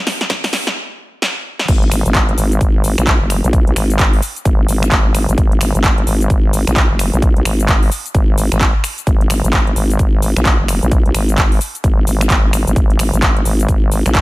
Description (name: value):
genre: bass house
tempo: 130 BPM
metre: 4/4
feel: swing 61% on 16ths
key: G# minor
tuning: A4 = 440 Hz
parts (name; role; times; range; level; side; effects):
- big-room dance drum kit; drums; 0.1-14.2 s; crash cymbal, finger snaps, handclaps, hi-hat, shaker, snare drum; -18 LUFS; equal; none
- electronic kick drum; drums; 0.3-14.2 s; none; -14 LUFS; equal; none
- vowel-sweep wobble bass; bass; 1.7-14.2 s; F#1 to B1; -15 LUFS; equal; chorus, tube saturation, sidechain pumping
room: little or no reverb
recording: high-pass filter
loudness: -12 LUFS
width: side -19 dB against mid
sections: 0.0-1.7 A section; 1.7-14.2 B section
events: build-up 0.0-1.7; drum fill 0.0-0.8, 1.2-1.7; stop 0.8-1.7; drop 1.7-14.2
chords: none